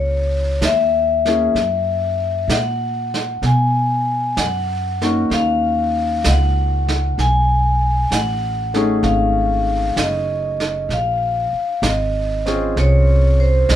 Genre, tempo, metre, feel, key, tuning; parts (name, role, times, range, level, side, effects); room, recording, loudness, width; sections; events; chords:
jazz ballad; 64 BPM; 4/4; swing 68% on 8ths; A4 = 440 Hz
vibraphone with medium hard mallets; melody; 0.0-13.8 s; C5 to Ab5; -19 LUFS; left 2 dB
upright bass; bass; 0.0-13.8 s; Gb1 to Cb3; -19 LUFS; right 1 dB
vintage brush drum kit; drums; 0.6-13.8 s; brushed snare drum, hi-hat, snare drum; -25 LUFS; right 3 dB
clear concert grand piano; accompaniment; 1.3-13.8 s; A3 to Ab4; -22 LUFS; left 1 dB
moderate studio ambience, RT60 0.5 s; heard from further back in the room; -16 LUFS; side -11 dB against mid
0.0-13.8 A section
0.0 Dbmadd9; 1.6 Gb7; 3.4 Cbmaj9; 7.2 Cb13; 10.9 Bbm9